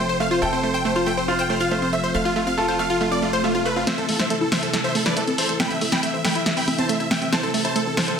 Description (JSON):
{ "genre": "uplifting trance", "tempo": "139 BPM", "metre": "4/4", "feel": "straight", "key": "A minor", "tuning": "A4 = 440 Hz", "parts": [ { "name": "supersaw chords", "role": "melody", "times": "0.0-8.2 s", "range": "F4 to B5", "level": "-24 LUFS", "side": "equal", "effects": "dub echo" }, { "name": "clear baby grand piano", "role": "second line", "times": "0.0-3.8 s", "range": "F4 to A4", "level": "-28 LUFS", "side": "right 1 dB", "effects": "tape echo" }, { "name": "wide unison pluck", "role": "second line", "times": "0.0-3.8 s", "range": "F5 to G6", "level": "-32 LUFS", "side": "right 1 dB", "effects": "none" }, { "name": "lush unison pad", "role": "sustained chords", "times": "0.0-8.2 s", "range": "C3 to A4", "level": "-28 LUFS", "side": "left 1 dB", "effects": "chorus" }, { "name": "tight sequencer bass", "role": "bass", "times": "0.0-8.2 s", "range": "F1 to A1", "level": "-38 LUFS", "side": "left 1 dB", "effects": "high-pass filter" }, { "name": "analog pluck", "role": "arpeggios", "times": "0.1-8.1 s", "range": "A3 to C5", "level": "-26 LUFS", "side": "right 1 dB", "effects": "chorus, dub echo" }, { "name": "swell", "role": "sound effects", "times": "3.1-3.9 s", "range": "none", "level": "-29 LUFS", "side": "left 1 dB", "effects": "none" }, { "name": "punchy analog drum machine", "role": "drums", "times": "3.9-8.2 s", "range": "congas, hi-hat, snare drum", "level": "-23 LUFS", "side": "left 1 dB", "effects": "none" } ], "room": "moderate concert hall reverb, RT60 2.0 s", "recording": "none", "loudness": "-19 LUFS", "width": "side -7 dB against mid", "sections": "0.0-3.9 A section; 3.9-8.2 B section", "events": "swell 3.1-3.9; build-up 3.9-8.2; drum fill 3.9-8.2", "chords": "0.0 F; 3.9 Am", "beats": "| 0.42 0.85 1.28 1.71 | 2.14 2.58 3.01 3.44 | 3.87 4.30 4.73 5.17 | 5.60 6.03 6.46 6.89 | 7.32 7.76 8.19" }